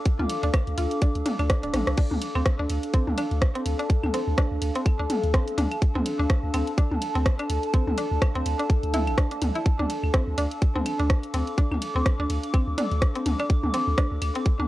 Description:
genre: minimal techno.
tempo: 125 BPM.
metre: 4/4.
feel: swing 57% on 16ths.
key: D minor.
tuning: A4 = 436 Hz.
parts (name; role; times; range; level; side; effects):
warbly tape-like pad; texture; 0.0-14.7 s; D4 to D6; -30 LUFS; equal; chorus, built-in reverb, sidechain pumping, cassette tape.
electronic kick drum; drums; 0.1-14.6 s; none; -21 LUFS; equal; overdrive, cassette tape.
garage drum kit; drums; 0.1-14.6 s; crash cymbal, hi-hat, ride cymbal, rim click; -32 LUFS; equal; overdrive, cassette tape.
mallet-like synth pluck; riff; 0.2-14.6 s; C4 to F4; -31 LUFS; equal; chorus, sidechain pumping, cassette tape, analog delay.
punchy sub bass; bass; 0.2-14.7 s; D1 to D2; -27 LUFS; equal; sidechain pumping.
electronic toms and claves; percussion; 0.2-14.7 s; none; -30 LUFS; left 1 dB; cassette tape.
room: light reverb.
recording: home recording on cassette.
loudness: -22 LUFS.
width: side -16 dB against mid.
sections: 0.0-14.7 A section.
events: drum fill 1.7.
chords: 0.0 Dm.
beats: | 0.06 0.54 1.02 1.50 | 1.98 2.46 2.94 3.42 | 3.90 4.38 4.86 5.34 | 5.82 6.30 6.78 7.26 | 7.74 8.22 8.70 9.18 | 9.66 10.14 10.62 11.10 | 11.58 12.06 12.54 13.02 | 13.50 13.98 14.46.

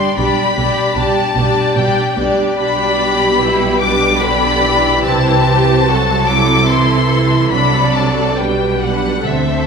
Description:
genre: classical, slow romantic movement for string orchestra.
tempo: 73 BPM.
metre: 3/4.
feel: uneven beats, rubato.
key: G major.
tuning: A4 = 440 Hz.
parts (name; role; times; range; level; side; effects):
warm symphonic violin section; melody; 0.0-9.7 s; E5 to D6; -16 LUFS; left 4 dB; none.
warm symphonic violin section; second line; 0.0-9.7 s; G4 to D5; -18 LUFS; left 2 dB; none.
rich symphonic viola section; accompaniment; 0.0-9.7 s; D3 to G4; -18 LUFS; right 2 dB; none.
rich studio double bass section; bass; 0.2-9.7 s; B1 to D2; -21 LUFS; right 3 dB; none.
warm symphonic cello section; bass; 0.2-9.7 s; B2 to D3; -19 LUFS; right 4 dB; none.
room: wet recital hall reverb, RT60 1.3 s.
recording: recorded in a church or concert hall.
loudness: -11 LUFS.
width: side -5 dB against mid.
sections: 0.0-9.7 A section.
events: none.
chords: 0.2 G/B; 5.1 Am/C; 7.5 D7/C; 8.4 G/B.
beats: | 0.17 0.96 1.76 | 2.58 3.40 4.22 | 5.06 5.89 6.72 | 7.54 8.39 9.28.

